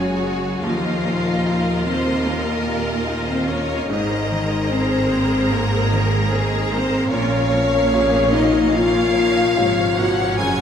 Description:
cinematic, emotional film score for orchestra; 74 BPM; 4/4; rubato; Bb minor; A4 = 440 Hz
rich studio violin section; melody; 0.0-10.6 s; F4 to Ab5; -26 LUFS; left 2 dB
rich symphonic violin section; second line; 0.0-10.6 s; Bb4 to Bb5; -27 LUFS; left 2 dB
bright symphonic viola section; accompaniment; 0.0-10.6 s; F3 to Db5; -27 LUFS; right 2 dB
clear baby grand piano; accompaniment; 0.0-10.6 s; Eb2 to Ab4; -27 LUFS; equal
dark French horn section; sustained chords; 0.0-10.6 s; F3 to Ab4; -21 LUFS; left 2 dB
rich symphonic cello section; bass; 0.0-10.6 s; Eb2 to Bb2; -26 LUFS; right 3 dB
rich symphonic double bass section; bass; 0.0-10.6 s; Gb1 to Eb2; -26 LUFS; right 2 dB
wet recital hall reverb, RT60 1.6 s; -17 LUFS; side -8 dB against mid
0.0-10.6 A section
0.0 Gbsus2; 0.6 Ebsus2; 3.9 Abadd9; 7.1 Bbmadd9
| 0.63 1.44 2.26 3.07 | 3.89 4.71 5.51 6.31 | 7.11 7.92 8.75 9.57 | 10.39

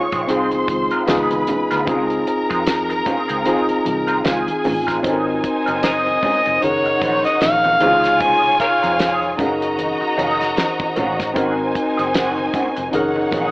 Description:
lush 1970s-style soul; 76 BPM; 4/4; swing 58% on 16ths; Db major; A4 = 440 Hz
warm studio violin section; second line; 0.0-13.5 s; Eb4 to Db6; -22 LUFS; equal
tine electric piano; accompaniment; 0.0-13.5 s; C3 to Bb4; -22 LUFS; left 1 dB; overdrive, fast stereo tremolo
electric guitar through a small old amp; riff; 0.0-13.5 s; Eb3 to C5; -25 LUFS; right 1 dB; wah, spring reverb
vibraphone with medium hard mallets; texture; 0.0-11.7 s; F4 to C5; -30 LUFS; equal
vintage muted fingered electric bass; bass; 0.1-13.5 s; F1 to F2; -32 LUFS; equal
damped 70s drum kit; drums; 0.1-13.5 s; hi-hat, kick drum, snare drum; -24 LUFS; equal
congas; percussion; 0.3-13.5 s; -29 LUFS; right 1 dB
overdriven harmonica; melody; 5.8-9.3 s; Bb4 to Ab5; -16 LUFS; equal
light reverb, small room ambience; AM radio sound; -16 LUFS; side -24 dB against mid
0.0-5.0 A section; 5.0-13.5 B section
0.0 Dbmaj7; 1.1 Db7; 1.9 Dbmaj7; 5.0 Ab7; 6.6 Gb6; 7.8 Dbmaj7; 9.4 Gb6; 11.4 Ab7; 12.9 Gb6
0.29 1.08 | 1.88 2.67 3.46 4.25 | 5.04 5.83 6.62 7.41 | 8.20 8.99 9.78 10.57 | 11.36 12.14 12.93

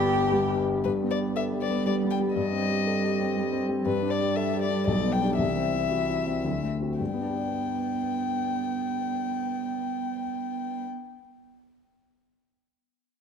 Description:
quick classical-period movement for piano trio; 106-121 BPM; 3/4; rubato; G major; A4 = 440 Hz
dark violin; melody; 0.0-10.9 s; B4 to G5; -31 LUFS; left 9 dB
dark cello; second line; 0.0-10.9 s; E3 to G4; -32 LUFS; right 8 dB
warm concert grand piano; accompaniment; 0.0-11.2 s; G1 to D5; -27 LUFS; left 2 dB
moderate concert hall reverb, RT60 2.1 s; close, detailed microphones; -25 LUFS; side -7 dB against mid
0.8-7.0 A section; 7.0-10.2 B section
slowing down 3.1-7.0
0.0 G; 2.4 Cm/G; 3.9 G5; 4.9 G/B; 5.4 C; 6.4 D7; 7.0 G
0.31 | 0.84 1.35 1.86 | 2.36 2.86 3.36 | 3.86 4.37 4.88 | 5.38 5.91 6.44 | 7.00 7.54 8.07 | 8.61 9.14 9.68

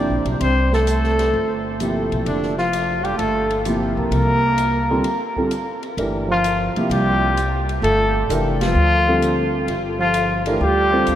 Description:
modal jazz; 129 BPM; 4/4; swing 69% on 8ths; G dorian from 6.0 s; A4 = 440 Hz
mellow trumpet; melody; 0.0-11.2 s; D4 to D5; -21 LUFS; left 2 dB
breathy trombone; second line; 0.0-11.2 s; D3 to D4; -24 LUFS; right 2 dB
warm grand piano; accompaniment; 0.0-11.2 s; C3 to C5; -24 LUFS; right 1 dB
upright bass; bass; 0.0-11.2 s; F1 to D2; -23 LUFS; equal
open jazz drum kit; drums; 0.3-11.2 s; hi-hat, kick drum, ride cymbal, snare drum; -33 LUFS; left 2 dB
wet huge ambient reverb, RT60 8.8 s; in a vast, echoing space; -17 LUFS; side -11 dB against mid
0.0-6.0 A section; 6.0-11.2 B section
break 5.0-6.0; band accent 8.5
0.0 C7sus4; 6.0 G9sus4
| 0.40 0.87 1.33 1.80 | 2.26 2.72 3.19 3.65 | 4.12 4.58 5.04 5.51 | 5.97 6.44 6.90 7.36 | 7.83 8.29 8.75 9.22 | 9.68 10.14 10.61 11.07

